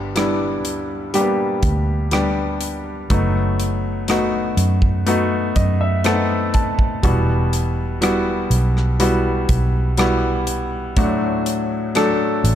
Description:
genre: pop ballad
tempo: 61 BPM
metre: 4/4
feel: straight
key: G major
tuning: A4 = 440 Hz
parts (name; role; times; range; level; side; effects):
- clear baby grand piano; accompaniment; 0.0-12.6 s; G2 to A5; -19 LUFS; left 1 dB; none
- vintage muted fingered electric bass; bass; 0.0-12.6 s; E1 to F#2; -21 LUFS; right 1 dB; none
- modern studio drum kit; drums; 0.2-12.6 s; hi-hat, kick drum, rim click; -22 LUFS; equal; none
room: light reverb, studio ambience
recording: dark, warm production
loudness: -16 LUFS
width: side -10 dB against mid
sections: 0.0-12.6 A section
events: grand piano fill 5.1-7.0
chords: 0.0 G; 3.1 B7/F#; 7.0 Emadd9; 11.0 D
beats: 0.15 1.14 2.12 | 3.10 4.09 5.07 6.05 | 7.04 8.02 9.01 9.99 | 10.97 11.96

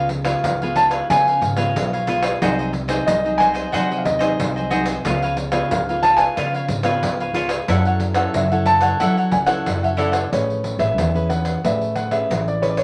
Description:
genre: samba and choro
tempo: 91 BPM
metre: 4/4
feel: straight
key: unclear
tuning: A4 = 440 Hz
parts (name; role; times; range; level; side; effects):
- cavaquinho; accompaniment; 0.0-10.3 s; E4 to F#5; -25 LUFS; equal; none
- nylon-string guitar; accompaniment; 0.0-12.8 s; G#2 to B4; -28 LUFS; equal; none
- upright bass; bass; 0.0-12.8 s; G#1 to F#3; -28 LUFS; equal; none
- pandeiro; percussion; 0.1-12.8 s; none; -28 LUFS; equal; none
- dark concert grand piano; melody; 0.4-12.8 s; C#5 to A5; -22 LUFS; equal; none
room: wet studio reverb, RT60 0.6 s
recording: none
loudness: -19 LUFS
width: mono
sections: 0.0-10.3 A section; 10.3-12.8 B section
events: none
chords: 0.0 C#7; 2.4 G#7/B#; 5.1 C#7; 7.7 F#m7; 10.3 Amaj9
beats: 0.44 1.10 1.76 | 2.42 3.08 3.74 4.39 | 5.05 5.71 6.37 7.03 | 7.69 8.35 9.01 9.66 | 10.32 10.98 11.64 12.30

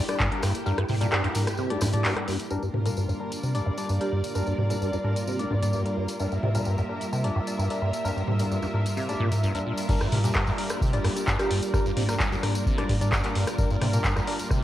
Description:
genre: acid house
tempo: 130 BPM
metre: 4/4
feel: straight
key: unclear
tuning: A4 = 437 Hz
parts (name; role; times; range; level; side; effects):
- string machine, full ensemble; sustained chords; 0.0-14.6 s; G3 to E5; -34 LUFS; equal; ensemble chorus, sidechain pumping, cassette tape
- percussive organ stab; stabs; 0.0-14.4 s; G3 to D5; -34 LUFS; left 3 dB; chorus, cassette tape, tape echo
- booming analog drum machine; drums; 0.1-14.6 s; crash cymbal, handclaps, hi-hat, rim click, toms; -28 LUFS; equal; cassette tape
- tambourine; percussion; 0.1-14.6 s; none; -40 LUFS; left 1 dB; none
- liquid acid bass; riff; 0.2-14.6 s; G2 to C3; -29 LUFS; equal; phaser, overdrive, analog chorus, vintage 12-bit sampler grit, sidechain pumping, cassette tape, tape echo
- electronic kick drum; drums; 0.2-0.3, 9.9-14.6 s; none; -27 LUFS; equal; cassette tape
- rich studio string section; texture; 2.5-14.6 s; G3 to E5; -34 LUFS; right 1 dB; sidechain pumping, cassette tape
- marimba with medium mallets; melody; 4.0-4.2, 11.4-11.6 s; G4; -33 LUFS; right 3 dB; cassette tape, tape echo
room: moderate spring reverb, RT60 1.3 s, digital ambience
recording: home recording on cassette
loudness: -24 LUFS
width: side -13 dB against mid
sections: 0.0-2.5 A section; 2.5-9.9 B section; 9.9-14.6 A section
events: drop 0.0-2.5, 9.9-14.6; kick drops out 0.7-2.5; filter sweep on acid bass 2.5-9.9; filter sweep on string machine 2.5-9.9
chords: 0.0 Gm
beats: 0.20 | 0.66 1.12 1.58 2.04 | 2.51 2.97 3.43 3.89 | 4.35 4.82 5.28 5.74 | 6.20 6.66 7.12 7.58 | 8.04 8.51 8.97 9.43 | 9.89 10.35 10.81 11.28 | 11.74 12.20 12.66 13.12 | 13.58 14.04 14.51

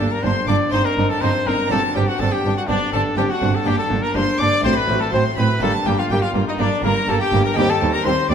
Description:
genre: classical, baroque-style concerto movement with solo episodes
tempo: 123 BPM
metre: 4/4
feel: straight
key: G minor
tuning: A4 = 440 Hz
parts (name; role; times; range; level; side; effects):
- warm chamber violin section; melody; 0.0-8.3 s; D5 to D6; -25 LUFS; left 2 dB; none
- warm trumpet; melody; 0.0-8.3 s; D4 to D5; -22 LUFS; left 2 dB; none
- warm chamber violin section; second line; 0.0-8.3 s; Bb3 to Eb4; -26 LUFS; left 2 dB; none
- harpsichord; accompaniment; 0.0-8.3 s; Eb2 to G4; -28 LUFS; equal; none
- warm chamber viola section; accompaniment; 0.0-8.3 s; F#3 to C4; -27 LUFS; right 2 dB; none
- rich chamber double bass section; bass; 0.0-8.3 s; G1 to Eb2; -24 LUFS; right 4 dB; none
- warm chamber cello section; bass; 0.0-8.3 s; Eb2 to A2; -24 LUFS; right 3 dB; none
room: wet recital hall reverb, RT60 1.7 s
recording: none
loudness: -16 LUFS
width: side -8 dB against mid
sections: 0.0-8.3 A section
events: none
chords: 0.0 Gm; 0.7 Cm/G; 1.7 D7/G; 3.7 Gm; 4.6 F#dim/A; 5.6 Gm; 7.6 Cm/Eb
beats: 0.24 0.73 1.23 | 1.71 2.20 2.69 3.18 | 3.67 4.15 4.64 5.13 | 5.62 6.10 6.59 7.08 | 7.57 8.05

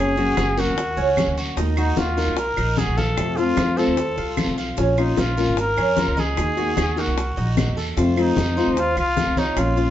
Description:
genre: latin, Cuban son and guajira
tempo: 150 BPM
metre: 4/4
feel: straight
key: unclear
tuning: A4 = 439 Hz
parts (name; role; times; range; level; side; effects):
- breathy trumpet; melody; 0.0-9.9 s; Eb4 to Bb4; -24 LUFS; equal; plate reverb
- nylon-string guitar; accompaniment; 0.0-9.9 s; C3 to Gb4; -24 LUFS; left 3 dB; none
- Cuban tres; arpeggios; 0.0-9.9 s; Db4 to F5; -27 LUFS; right 3 dB; none
- upright bass; bass; 0.0-9.9 s; Gb1 to F2; -24 LUFS; right 1 dB; none
- bongos; percussion; 0.2-9.9 s; none; -30 LUFS; left 4 dB; none
- congas; percussion; 0.2-9.9 s; none; -28 LUFS; left 2 dB; none
- maracas; percussion; 0.2-9.9 s; none; -44 LUFS; right 4 dB; none
- claves; percussion; 0.4-9.8 s; none; -33 LUFS; right 1 dB; none
- guiro; percussion; 0.4-9.9 s; none; -34 LUFS; right 1 dB; none
room: wet small room reverb, RT60 0.5 s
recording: heard from further back in the room, nothing above 7.8 kHz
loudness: -18 LUFS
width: side -12 dB against mid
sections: 0.0-9.9 A section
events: none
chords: 0.0 Gb; 1.6 Ebm; 3.2 F; 4.8 Bbm; 6.4 Ebm; 8.0 F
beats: 0.37 0.77 1.17 | 1.57 1.97 2.37 2.77 | 3.17 3.58 3.98 4.38 | 4.78 5.18 5.58 5.98 | 6.38 6.78 7.17 7.57 | 7.97 8.37 8.77 9.17 | 9.57

